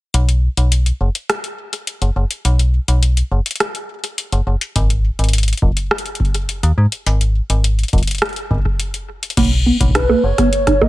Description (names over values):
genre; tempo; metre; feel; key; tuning
IDM; 104 BPM; 4/4; straight; B major; A4 = 440 Hz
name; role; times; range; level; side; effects
metallic FM bass; bass; 0.1-10.3 s; D#1 to G#2; -14 LUFS; equal; none
booming analog drum machine; drums; 0.1-10.9 s; bongos, crash cymbal, hi-hat, rim click; -20 LUFS; equal; tape echo
electronic kick drum; drums; 4.8-10.9 s; none; -18 LUFS; equal; none
deep acid bass; arpeggios; 9.4-10.9 s; A#3 to D#4; -17 LUFS; right 2 dB; lush chorus, vintage 12-bit sampler grit, tape echo
warbly nostalgic lead; melody; 9.9-10.9 s; B4 to D#5; -17 LUFS; equal; wide subtle chorus
room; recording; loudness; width
digital ambience; none; -15 LUFS; side -17 dB against mid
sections
0.1-9.4 A section; 9.4-10.9 B section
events
filter sweep on FM bass 0.1-9.4; break 8.8-9.4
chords
0.1 B5; 4.8 G#5; 9.4 Bmaj7(no3)